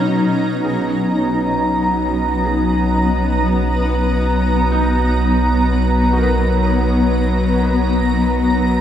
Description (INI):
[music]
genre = ambient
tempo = free time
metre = none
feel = none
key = B major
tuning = A4 = 440 Hz
[part]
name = granular cloud pad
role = sustained chords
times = 0.0-8.8 s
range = B2 to A#5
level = -16 LUFS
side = equal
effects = built-in reverb, shimmer reverb
[part]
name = felt-muted upright piano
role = arpeggios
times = 0.0-8.8 s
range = D#4 to B4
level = -31 LUFS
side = right 1 dB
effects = none
[part]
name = bowed-like drone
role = drone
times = 0.0-8.8 s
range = F#3 to B3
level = -23 LUFS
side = left 1 dB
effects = built-in reverb
[part]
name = warm sub bass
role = bass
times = 0.6-8.8 s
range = B1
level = -19 LUFS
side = equal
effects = none
[sound]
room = wet lush hall reverb, RT60 2.7 s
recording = cassette tape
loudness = -14 LUFS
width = side -10 dB against mid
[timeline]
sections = 0.7-8.8 A section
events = none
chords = 0.0 F#6/B; 0.7 Bmaj7